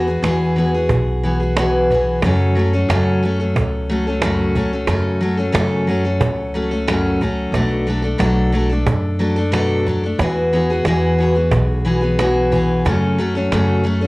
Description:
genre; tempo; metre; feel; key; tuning
acoustic folk duo or small band; 90 BPM; 4/4; straight; E mixolydian; A4 = 441 Hz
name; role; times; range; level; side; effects
picked steel-string acoustic guitar; accompaniment; 0.0-14.1 s; F#2 to A4; -17 LUFS; left 1 dB; none
upright bass; bass; 0.0-14.1 s; B1 to F#2; -20 LUFS; equal; none
cajon; percussion; 0.2-13.9 s; none; -21 LUFS; right 2 dB; none
room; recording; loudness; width
moderate studio reverb, RT60 0.6 s; home recording on cassette; -15 LUFS; side -22 dB against mid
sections
0.0-14.1 A section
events
none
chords
0.0 Eadd9; 2.2 F#m; 7.5 Bm7; 10.2 Eadd9; 12.8 F#m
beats
0.23 0.90 1.56 | 2.23 2.89 3.55 4.22 | 4.88 5.55 6.21 6.87 | 7.54 8.20 8.87 9.53 | 10.19 10.86 11.52 12.18 | 12.85 13.51

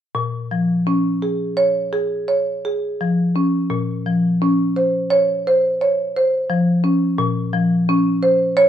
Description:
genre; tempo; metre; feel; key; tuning
classical, contemporary piece for solo marimba; 86 BPM; 5/4; rubato; Bb minor; A4 = 440 Hz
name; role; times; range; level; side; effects
marimba with medium hard mallets; solo; 0.1-8.7 s; Bb2 to Db5; -16 LUFS; equal; none
room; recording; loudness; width
light reverb; none; -16 LUFS; side -10 dB against mid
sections
0.2-8.7 A section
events
none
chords
0.2 Bbm7; 3.7 Bbmadd9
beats
| 0.16 0.88 1.58 2.29 3.01 | 3.72 4.42 5.12 5.82 6.51 | 7.20 7.89 8.56

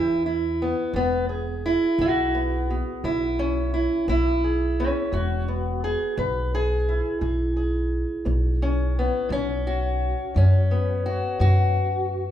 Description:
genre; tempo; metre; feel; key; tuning
acoustic country blues, solo or duo; 57 BPM (dotted quarters); 12/8; straight; E major; A4 = 444 Hz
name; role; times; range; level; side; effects
fingerpicked steel-string acoustic guitar; melody; 0.0-12.3 s; E2 to B4; -24 LUFS; equal; none
upright bass; bass; 0.0-12.2 s; E1 to F#2; -24 LUFS; equal; none
room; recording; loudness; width
moderate large studio reverb, RT60 1.4 s; band playing live in one room; -21 LUFS; side -11 dB against mid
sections
0.0-12.3 A section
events
none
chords
0.0 A (rootless); 0.9 E; 9.3 B5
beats
| 0.95 1.99 3.04 4.08 | 5.13 6.17 7.22 8.26 | 9.31 10.35 11.39

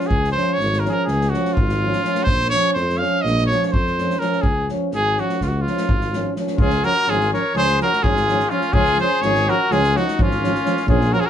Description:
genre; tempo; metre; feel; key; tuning
balkan folk, Balkan brass band; 250 BPM (eighths); 9/8; straight; Db major; A4 = 442 Hz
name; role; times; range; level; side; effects
bright trumpet; melody; 0.0-11.3 s; F4 to F5; -20 LUFS; equal; none
clear euphonium; accompaniment; 0.0-11.2 s; Db4; -26 LUFS; left 1 dB; none
mellow euphonium; accompaniment; 0.0-11.2 s; F3; -28 LUFS; right 4 dB; none
unplugged drum kit; percussion; 0.0-11.2 s; kick drum, snare drum; -24 LUFS; equal; none
mellow tuba; bass; 0.1-11.1 s; Ab1 to F2; -23 LUFS; equal; none
clear trumpet; second line; 6.6-11.3 s; Db4 to Bb4; -25 LUFS; left 4 dB; none
room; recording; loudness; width
wet small room reverb, RT60 0.6 s; band playing live in one room, nothing above 10.4 kHz; -16 LUFS; side -9 dB against mid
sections
0.0-6.6 A section; 6.6-11.3 A section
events
none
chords
0.0 Db; 2.3 Bbm; 4.4 Db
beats
| 0.10 0.34 0.58 0.82 1.06 1.30 1.54 1.79 2.03 | 2.27 2.51 2.75 2.99 3.23 3.47 3.71 3.95 4.19 | 4.43 4.67 4.91 5.15 5.39 5.63 5.87 6.11 6.35 | 6.59 6.83 7.07 7.31 7.55 7.79 8.02 8.26 8.50 | 8.74 8.98 9.21 9.45 9.69 9.93 10.17 10.40 10.64 | 10.88 11.12

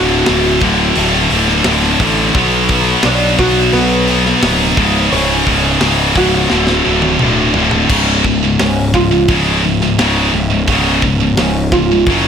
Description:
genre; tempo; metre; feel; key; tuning
heavy metal; 86 BPM; 4/4; straight; unclear; A4 = 440 Hz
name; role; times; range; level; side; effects
oud; melody; 0.0-12.1 s; B3 to F#4; -18 LUFS; right 2 dB; digital delay
heavy high-gain guitar; riff; 0.0-12.3 s; C#2 to B3; -16 LUFS; right 13 dB; distortion
high-gain distorted guitar; riff; 0.0-12.3 s; C#2 to B3; -16 LUFS; left 13 dB; distortion
fuzz picked electric bass; bass; 0.0-12.3 s; C#1 to B1; -16 LUFS; equal; overdrive, tube saturation
tight metal drum kit; drums; 0.3-12.2 s; crash cymbal, hi-hat, kick drum, snare drum, toms; -19 LUFS; left 1 dB; soft clipping on kick, soft clipping on snare
room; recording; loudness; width
little or no reverb; blown-out, overdriven recording, overdrive; -10 LUFS; side -7 dB against mid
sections
0.0-7.9 A section; 7.9-12.3 B section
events
drum fill 6.5-7.9; oud solo 7.9-12.3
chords
0.0 D; 2.3 Bm; 4.8 C#5; 6.5 D; 7.9 C#5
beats
0.27 0.96 1.65 | 2.35 3.04 3.73 4.42 | 5.12 5.81 6.50 7.20 | 7.89 8.59 9.28 9.98 | 10.67 11.37 12.07

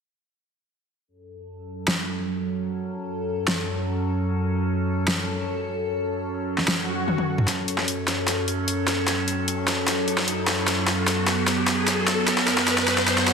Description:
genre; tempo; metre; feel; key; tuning
heavy wobble dubstep; 150 BPM; 4/4; half-time; F# minor; A4 = 441 Hz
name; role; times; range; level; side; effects
evolving wavetable pad; sustained chords; 1.1-13.3 s; F#2 to A4; -25 LUFS; right 1 dB; phaser, built-in reverb
dubstep drum kit; drums; 1.9-13.3 s; hi-hat, snare drum, toms; -24 LUFS; left 1 dB; high-pass filter on snare, studio reverb, high-pass filter on toms, high-pass filter on hats
swell and riser; sound effects; 6.8-13.3 s; none; -29 LUFS; left 1 dB; none
room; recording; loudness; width
wet lush hall reverb, RT60 1.9 s, digital ambience; dense, heavily limited modern master; -21 LUFS; side -6 dB against mid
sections
1.1-7.5 A section; 7.5-13.3 B section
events
filter sweep on ambient pad 1.1-7.5; swell 6.8-7.5, 13.1; drum fill 7.1-7.5, 7.5-13.3; build-up 7.5-13.3; riser 7.5-13.3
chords
1.1 F#m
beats
| 1.08 1.48 1.88 2.28 | 2.68 3.08 3.48 3.88 | 4.28 4.68 5.08 5.48 | 5.88 6.28 6.68 7.08 | 7.48 7.88 8.28 8.68 | 9.08 9.48 9.88 10.28 | 10.68 11.08 11.48 11.88 | 12.28 12.68 13.08

